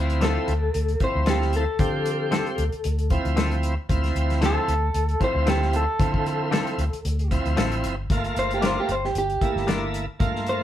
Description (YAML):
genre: straight-eighth soul blues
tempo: 114 BPM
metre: 4/4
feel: swing 54% on 16ths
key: D minor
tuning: A4 = 440 Hz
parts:
  - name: bright tonewheel organ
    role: accompaniment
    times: 0.0-10.6 s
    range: F3 to G4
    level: -28 LUFS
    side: right 2 dB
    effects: slow rotary speaker
  - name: vintage muted fingered electric bass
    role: bass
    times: 0.0-10.6 s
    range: G1 to D3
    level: -25 LUFS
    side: equal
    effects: none
  - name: warm soul drum kit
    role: drums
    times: 0.1-10.6 s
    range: hi-hat, kick drum, snare drum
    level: -27 LUFS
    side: left 1 dB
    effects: none
  - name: electric guitar through a small old amp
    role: melody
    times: 0.2-10.6 s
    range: G4 to C5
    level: -26 LUFS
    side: equal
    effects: none
  - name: direct-recorded clean electric guitar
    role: stabs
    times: 0.2-9.9 s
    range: D3 to Bb4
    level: -29 LUFS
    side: left 4 dB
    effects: none
room: light reverb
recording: band playing live in one room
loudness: -21 LUFS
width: side -11 dB against mid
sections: 0.0-10.6 A section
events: clean electric guitar solo 0.0-10.6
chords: 0.0 Dm7; 8.1 Gm7